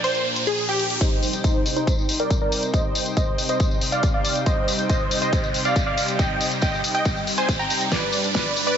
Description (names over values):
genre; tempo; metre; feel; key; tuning
uplifting trance; 139 BPM; 4/4; straight; C minor; A4 = 440 Hz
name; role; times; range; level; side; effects
supersaw stab; melody; 0.0-8.8 s; Eb4 to Bb5; -24 LUFS; right 1 dB; sidechain pumping, low-pass filter, tape echo
wide unison pluck; second line; 0.0-1.0 s; G4 to C5; -31 LUFS; equal; none
lush unison pad; sustained chords; 0.0-8.8 s; G2 to G5; -29 LUFS; left 1 dB; chorus, sidechain pumping
big-room dance drum kit; drums; 0.0-8.8 s; hi-hat, snare drum; -29 LUFS; left 2 dB; low-pass filter on hats, low-pass filter on snare
riser; sound effects; 0.0-8.8 s; none; -30 LUFS; right 2 dB; none
electronic kick drum; drums; 1.0-8.4 s; none; -23 LUFS; equal; none
tambourine; percussion; 1.0-8.8 s; none; -30 LUFS; left 4 dB; none
room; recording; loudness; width
light reverb; high-pass filter, nothing above 7.7 kHz; -19 LUFS; side -8 dB against mid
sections
0.0-1.0 A section; 1.0-8.8 B section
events
riser 0.0-1.0, 1.0-8.8; filter sweep on supersaw synth 0.0-1.0, 1.0-8.8; filter sweep on synth pluck 0.0-1.0; build-up 1.0-8.8; filter sweep 1.0-8.8; drum fill 7.9-8.8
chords
0.0 Bb; 1.0 Cm; 7.9 G